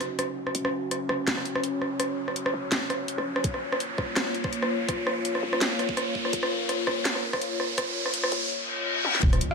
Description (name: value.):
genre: half-time drum and bass.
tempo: 166 BPM.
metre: 4/4.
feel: swing 55% on 16ths, half-time.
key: unclear.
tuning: A4 = 440 Hz.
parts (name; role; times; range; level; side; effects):
dark analog pad; sustained chords; 0.0-9.5 s; Bb3 to Eb5; -31 LUFS; left 2 dB; chorus, sidechain pumping.
growling 808-style bass; bass; 0.0-9.4 s; Eb1 to C2; -34 LUFS; equal; tube saturation, high-pass filter.
drum and bass drum kit; drums; 0.0-9.5 s; hi-hat, rim click, snare drum, toms; -28 LUFS; equal; none.
riser, reverse cymbal and impact; sound effects; 0.0-9.5 s; none; -31 LUFS; equal; none.
electronic kick drum; drums; 3.4-9.3 s; none; -28 LUFS; equal; none.
room: moderate digital room reverb, RT60 1.2 s.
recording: high-pass filter.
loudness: -25 LUFS.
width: side -4 dB against mid.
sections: 0.0-9.2 A section.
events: build-up 0.0-9.2; riser 0.0-8.5; filter sweep 0.0-9.2; reverse cymbal 8.5-9.2; drum fill 9.0; impact 9.2-9.5.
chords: 0.0 Ebm7; 3.4 Bbm.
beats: 0.19 | 0.55 0.91 1.27 1.64 | 2.00 2.36 2.72 3.08 | 3.44 3.80 4.17 4.53 | 4.89 5.25 5.61 5.97 | 6.33 6.70 7.06 7.42 | 7.78 8.14 8.50 8.86 | 9.23.